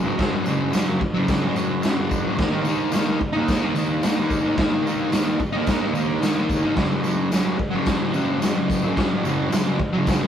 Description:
garage rock duo or trio; 109 BPM; 4/4; straight; F# major; A4 = 440 Hz
fuzz guitar; riff; 0.0-10.3 s; F#2 to D#4; -21 LUFS; equal; distortion
raw garage drum kit; drums; 0.2-10.2 s; crash cymbal, kick drum, snare drum; -24 LUFS; equal
tambourine; percussion; 0.2-10.2 s; -40 LUFS; left 2 dB
moderate studio reverb, RT60 0.6 s; rough rehearsal-room recording, warm saturation; -19 LUFS; side -9 dB against mid
0.0-10.3 A section
0.0 F#5; 2.4 D#5; 6.8 F#5

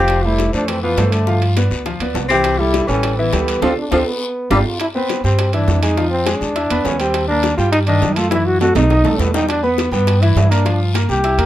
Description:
Afro-Cuban jazz; 204 BPM; 4/4; straight; C major; A4 = 440 Hz
clear trombone; melody; 0.0-11.5 s; A3 to G4; -18 LUFS; equal
mellow tenor saxophone; second line; 0.0-4.6 s; D3 to C4; -21 LUFS; left 2 dB
clear concert grand piano; accompaniment; 0.0-11.5 s; Eb3 to E6; -21 LUFS; equal
upright bass; bass; 0.0-11.5 s; F1 to G2; -18 LUFS; equal
bongos; percussion; 0.0-11.5 s; -26 LUFS; left 8 dB
guiro; percussion; 0.1-11.5 s; -31 LUFS; left 6 dB
timbales; percussion; 0.1-11.5 s; -26 LUFS; right 6 dB
light reverb; close, detailed microphones; -14 LUFS; side -13 dB against mid
0.0-4.8 A section; 4.8-11.5 B section
drum fill 3.6-4.8, 8.3-9.5; band accent 3.6-4.8
0.1 Fmaj9; 1.3 G7; 2.4 C6; 3.0 A5; 3.6 Dm; 4.2 G7; 4.8 Cmaj9; 6.0 Fm; 6.6 E5; 7.1 Ebmaj7; 8.3 B7sus4; 8.9 B7; 9.5 Em; 10.7 Gm7

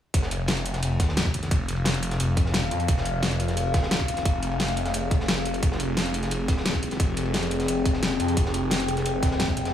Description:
dark technical drum and bass; 175 BPM; 4/4; straight; F minor; A4 = 440 Hz
deep dark ambient pad; sustained chords; 1.8-9.7 s; C4 to G5; -30 LUFS; left 2 dB; chorus, built-in reverb, sidechain pumping
phased detuned saw bass; bass; 0.1-9.7 s; F1 to F2; -27 LUFS; equal; phaser, overdrive
crunchy breakbeat drum kit; drums; 0.1-9.7 s; ride cymbal, snare drum; -35 LUFS; equal; high-pass filter on cymbals, high-pass filter on snare, high-pass filter on room
dubstep drum kit; drums; 0.1-9.7 s; hi-hat, snare drum; -28 LUFS; left 1 dB
electronic kick drum; drums; 0.1-9.6 s; -23 LUFS; equal
light reverb, small room ambience; studio ambience; -22 LUFS; side -10 dB against mid
0.1-9.7 A section
0.1 Fm

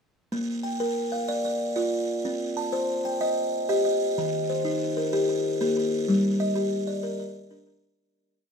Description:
southern african traditional, mbira-style interlocking cycle; 125 BPM (dotted quarters); 12/8; straight; Bb major; A4 = 442 Hz
buzzing kalimba; solo; 0.3-8.1 s; Eb3 to A5; -24 LUFS; equal
moderate small room ambience, RT60 0.5 s; minimal, uncompressed stereo recording; -24 LUFS; side -6 dB against mid
0.3-8.0 A section
fade-out 6.1-8.0
0.3 Bb; 2.2 Cm; 4.2 Eb; 6.1 Gm

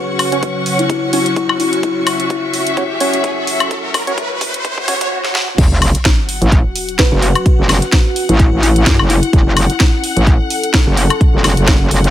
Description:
bass house; 128 BPM; 4/4; swing 56% on 16ths; F# minor; A4 = 440 Hz
sweeping resonant pad; sustained chords; 0.0-12.1 s; C#3 to C#5; -24 LUFS; right 1 dB; chorus, sidechain pumping
percussive organ stab; stabs; 0.0-4.9 s; C#4 to C#5; -21 LUFS; right 2 dB; chorus, sidechain pumping, ping-pong delay
riser, swell and sub drop; sound effects; 1.5-7.5 s; -22 LUFS; right 1 dB
rich studio string section; texture; 0.0-12.1 s; C#4 to C#6; -22 LUFS; left 3 dB; sidechain pumping
garage drum kit; drums; 0.2-12.1 s; crash cymbal, hi-hat, snare drum, toms, woodblock; -17 LUFS; left 1 dB; high-pass filter on hats, high-pass filter on snare, high-pass filter on perc, high-pass filter on toms, high-pass filter on cymbals
electronic kick drum; drums; 0.4-11.8 s; -12 LUFS; equal; high-pass filter on kick
buzzing kalimba; melody; 0.8-2.3, 7.0-9.8 s; E4 to B4; -21 LUFS; left 4 dB; ping-pong delay
metallic wobble bass; bass; 5.6-12.1 s; F#1 to F#2; -13 LUFS; equal; distortion, chorus, tube saturation, sidechain pumping
digital ambience; high-pass filter; -11 LUFS; side -12 dB against mid
0.0-5.6 A section; 5.6-12.1 B section
build-up 0.0-5.6; filter sweep on synth stab 0.0-5.6; filter sweep on analog synth pad 0.0-5.6; filter sweep 0.0-5.6; riser 1.5-5.1; drum fill 1.8-5.1, 5.2-5.6; swell 4.6-5.6; drop 5.6-12.1; impact 5.6-7.5
0.0 F#5

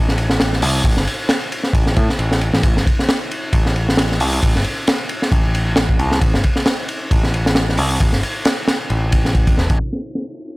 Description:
breakbeat, breaks; 134 BPM; 4/4; swing 56% on 16ths; A minor; A4 = 444 Hz
overdriven picked electric bass; bass; 0.0-9.8 s; E1 to A2; -18 LUFS; equal
crunchy breakbeat drum kit; drums; 0.1-10.6 s; hi-hat, kick drum, ride cymbal, snare drum; -16 LUFS; equal; low-pass filter on kick, low-pass filter on cymbals, low-pass filter on hats, low-pass filter on snare, low-pass filter on room
little or no reverb; low-pass filter; -15 LUFS; side -23 dB against mid
0.0-9.8 A section

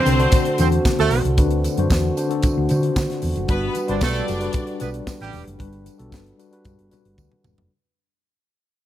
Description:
disco; 114 BPM; 4/4; straight; G major; A4 = 440 Hz
clear studio string section; second line; 0.0-4.8 s; B3 to D5; -25 LUFS; right 1 dB
mellow tine electric piano; accompaniment; 0.0-7.7 s; D3 to C5; -25 LUFS; left 5 dB; medium stereo tremolo
mellow French horn section; sustained chords; 0.0-7.7 s; D3 to B4; -28 LUFS; right 4 dB
hollow-body short-scale fingered electric bass; bass; 0.1-7.7 s; E1 to D3; -22 LUFS; equal
tight funk drum kit; drums; 0.1-7.7 s; hi-hat, kick drum, snare drum, toms; -22 LUFS; equal
tambourine; percussion; 0.1-7.6 s; -40 LUFS; right 14 dB
congas; percussion; 0.3-7.6 s; -34 LUFS; left 3 dB
clear horn section; stabs; 0.6-5.4 s; G3 to D5; -25 LUFS; right 7 dB
light reverb, small room ambience; -18 LUFS; side -12 dB against mid
0.0-7.7 A section
fade-out 0.0-7.7; drum fill 7.2-7.7
0.0 D7; 3.5 Gmaj7

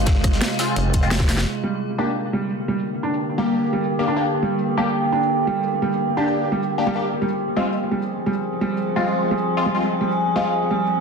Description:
dark technical drum and bass; 172 BPM; 4/4; straight; G phrygian; A4 = 440 Hz
metallic inharmonic drone; sustained chords; 0.0-11.0 s; C3 to Ab4; -23 LUFS; right 1 dB; chorus, built-in reverb, vintage 12-bit sampler grit, sidechain pumping
crunchy breakbeat drum kit; drums; 0.1-1.5 s; hi-hat, snare drum; -32 LUFS; equal; high-pass filter on hats, high-pass filter on snare, high-pass filter on room
drum and bass drum kit; drums; 0.1-1.4 s; hi-hat, rim click, snare drum; -23 LUFS; equal; overdrive
electronic kick drum; drums; 0.1-1.3 s; -19 LUFS; equal; overdrive
band-passed chord stab; stabs; 0.6-10.5 s; Ab3 to G4; -24 LUFS; left 3 dB; phaser, ensemble chorus, cassette tape, tape echo
pulsing pluck wobble bass; bass; 0.8-1.4 s; F1; -22 LUFS; equal; chorus
felt-muted upright piano; arpeggios; 1.6-10.9 s; G3 to D4; -24 LUFS; right 3 dB; sidechain pumping, low-pass filter, tape echo
wet digital room reverb, RT60 0.9 s, studio reverb; dense, heavily limited modern master; -19 LUFS; side -5 dB against mid
0.0-1.5 A section; 1.5-11.0 B section
drop 0.0-1.5; drum fill 1.2; filter sweep on synth stab 1.5-11.0
0.0 Fm; 1.5 Gm; 7.0 Fm

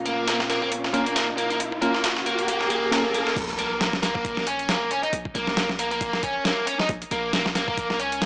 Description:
breakbeat, breaks; 136 BPM; 4/4; swing 57% on 16ths; Bb minor; A4 = 440 Hz
dark analog pad; sustained chords; 0.0-3.3 s; Bb2 to F5; -33 LUFS; equal; chorus, sidechain pumping
riser and sub drop; sound effects; 0.0-5.1 s; -30 LUFS; equal
biting overdriven guitar; riff; 0.1-8.3 s; Bb3 to Eb4; -24 LUFS; equal; vintage 12-bit sampler grit, analog delay
dusty soul sampler-style drum kit; drums; 0.1-8.3 s; crash cymbal, hi-hat, kick drum, snare drum; -26 LUFS; equal; high-pass filter on hats, high-pass filter on kick, high-pass filter on snare, high-pass filter on cymbals
bell-like tine electric piano; stabs; 0.9-3.0 s; Bb3 to Bb4; -26 LUFS; equal; medium stereo tremolo, analog delay
warm 808-style bass; bass; 3.4-8.3 s; F1 to Db2; -38 LUFS; equal
moderate plate reverb, RT60 1.0 s; dry, gritty hardware recording, transformer saturation, cassette tape, small speaker sound; -21 LUFS; side -27 dB against mid
0.0-3.4 A section; 3.4-8.3 B section
build-up 0.0-3.4; riser 0.0-3.4; drop 3.4-8.3; impact 3.4-5.1
0.0 Bbm

